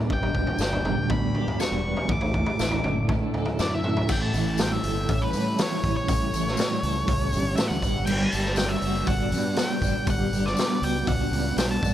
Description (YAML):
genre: psychedelic rock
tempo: 120 BPM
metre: 4/4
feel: straight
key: unclear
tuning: A4 = 439 Hz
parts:
  - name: tonewheel organ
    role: sustained chords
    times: 0.0-11.9 s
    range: G3 to G4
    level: -38 LUFS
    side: right 6 dB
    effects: none
  - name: twelve-string electric guitar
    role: riff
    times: 0.0-11.9 s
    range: G2 to A4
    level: -28 LUFS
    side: right 1 dB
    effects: tremolo, double-tracked left and right
  - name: fuzz fingered electric bass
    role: bass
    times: 0.0-11.9 s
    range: E1 to A2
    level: -29 LUFS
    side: equal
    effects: overdrive
  - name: octave-fuzz lead guitar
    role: melody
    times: 0.1-11.9 s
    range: B4 to D6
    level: -30 LUFS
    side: equal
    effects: distortion, analog delay
  - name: raw garage drum kit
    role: drums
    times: 0.1-11.9 s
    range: crash cymbal, hi-hat, kick drum, snare drum, toms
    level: -27 LUFS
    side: equal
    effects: none
  - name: tambourine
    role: percussion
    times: 0.6-11.9 s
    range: none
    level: -41 LUFS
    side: left 14 dB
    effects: none
room: small room ambience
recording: none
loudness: -22 LUFS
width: side -12 dB against mid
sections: 0.0-4.1 A section; 4.1-11.9 B section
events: none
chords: 0.1 G; 2.1 Asus4; 4.1 A7; 7.8 Gmaj7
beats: | 0.10 0.60 1.10 1.60 | 2.10 2.59 3.09 3.59 | 4.09 4.59 5.09 5.59 | 6.08 6.58 7.08 7.58 | 8.08 8.58 9.08 9.58 | 10.07 10.57 11.07 11.57